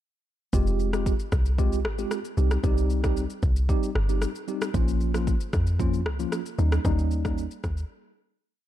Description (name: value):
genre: afrobeats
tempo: 114 BPM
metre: 4/4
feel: straight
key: F minor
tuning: A4 = 439 Hz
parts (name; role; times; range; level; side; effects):
- mellow tine electric piano; accompaniment; 0.5-7.4 s; F3 to G4; -29 LUFS; right 1 dB; medium stereo tremolo
- deep log drum bass; bass; 0.5-7.8 s; F1 to F2; -25 LUFS; equal; none
- deep house drum kit; drums; 0.5-7.9 s; kick drum, rim click, shaker; -28 LUFS; equal; overdrive
room: digital ambience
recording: dark, warm production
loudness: -23 LUFS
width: side -12 dB against mid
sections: 0.5-8.7 verse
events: fade-out 6.8-8.7; break 7.9-8.7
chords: 0.5 Fmadd9; 2.4 Cm; 4.7 Bbm; 6.6 Eb7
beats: | 0.53 1.06 1.58 2.11 | 2.64 3.16 3.69 4.22 | 4.74 5.27 5.79 6.32 | 6.85 7.37